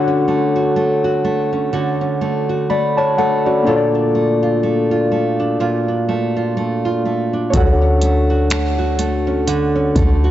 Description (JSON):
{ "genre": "contemporary R&B", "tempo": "62 BPM", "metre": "4/4", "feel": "swing 58% on 16ths", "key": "D major", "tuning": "A4 = 439 Hz", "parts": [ { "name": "muted felt-like synth keys", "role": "accompaniment", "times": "0.0-10.3 s", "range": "Bb3 to B5", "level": "-17 LUFS", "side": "left 2 dB", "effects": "chorus" }, { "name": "nylon-string guitar", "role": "arpeggios", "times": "0.0-10.3 s", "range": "Bb2 to F#4", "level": "-19 LUFS", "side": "right 4 dB", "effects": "none" }, { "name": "clean 808-style bass", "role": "bass", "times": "7.5-10.3 s", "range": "D2", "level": "-17 LUFS", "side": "equal", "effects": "none" }, { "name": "booming analog drum machine", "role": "drums", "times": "7.5-10.2 s", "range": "finger snaps, hi-hat, kick drum", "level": "-18 LUFS", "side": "equal", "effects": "none" } ], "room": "light reverb, digital ambience", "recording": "dry, gritty hardware recording, nothing above 7.7 kHz", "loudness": "-14 LUFS", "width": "side -12 dB against mid", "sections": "0.0-10.3 A section", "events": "none", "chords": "0.0 Dmaj7; 3.7 Bbmaj7; 7.5 Dmaj7" }